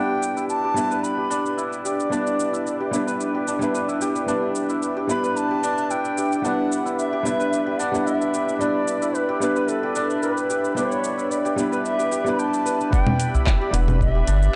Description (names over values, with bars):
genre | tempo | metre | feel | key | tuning
organic downtempo | 111 BPM | 4/4 | straight | E minor | A4 = 441 Hz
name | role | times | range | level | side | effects
bright bansuri | melody | 0.0-14.6 s | A4 to B5 | -28 LUFS | equal | tape echo
felt-muted upright piano | accompaniment | 0.0-14.6 s | G3 to B4 | -29 LUFS | equal | sidechain pumping, tape echo
warm analog pad | sustained chords | 0.0-14.6 s | D4 to B5 | -30 LUFS | equal | chorus, sidechain pumping
santur | arpeggios | 0.0-14.6 s | D4 to G5 | -30 LUFS | equal | low-pass filter, tape echo
afro-pop drum kit | drums | 0.2-14.5 s | cabasa, congas, handclaps, hi-hat | -31 LUFS | equal | none
electronic kick drum | drums | 12.9-14.1 s | none | -22 LUFS | equal | overdrive
udu | percussion | 13.3-13.4 s | none | -25 LUFS | equal | none
round analog bass | bass | 13.7-14.5 s | E1 to G1 | -21 LUFS | equal | none
room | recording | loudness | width
moderate echo chamber reverb, RT60 1.9 s, small room ambience | dark, warm production, nothing above 10.3 kHz | -23 LUFS | mono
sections
0.0-12.9 A section; 12.9-14.6 B section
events
filter sweep on analog synth pad 0.0-12.9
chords
0.0 Em7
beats
0.50 1.04 1.58 | 2.12 2.66 3.20 3.74 | 4.28 4.82 5.36 5.90 | 6.44 6.98 7.52 8.06 | 8.61 9.15 9.69 10.23 | 10.77 11.31 11.85 12.39 | 12.93 13.47 14.01 14.55